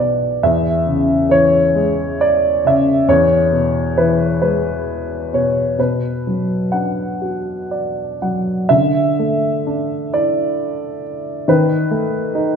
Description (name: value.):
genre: classical, lyrical solo piano.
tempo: 40-46 BPM (dotted quarters).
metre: 6/8.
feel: rubato.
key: B dorian.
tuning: A4 = 440 Hz.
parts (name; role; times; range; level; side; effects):
warm baby grand piano; solo; 0.0-12.6 s; B1 to F#5; -14 LUFS; equal; none.
room: wet recital hall reverb, RT60 1.4 s.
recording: minimal, uncompressed stereo recording.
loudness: -14 LUFS.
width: side -7 dB against mid.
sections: 0.0-8.7 A section; 8.7-12.6 B section.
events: grand piano fill 7.2-8.7.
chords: 0.4 C#m/E; 3.1 E; 5.8 Bm; 8.7 Dsus2; 11.5 B7/D#.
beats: | 0.42 1.75 | 3.08 4.42 | 5.78 7.21 | 8.70 10.13 | 11.48.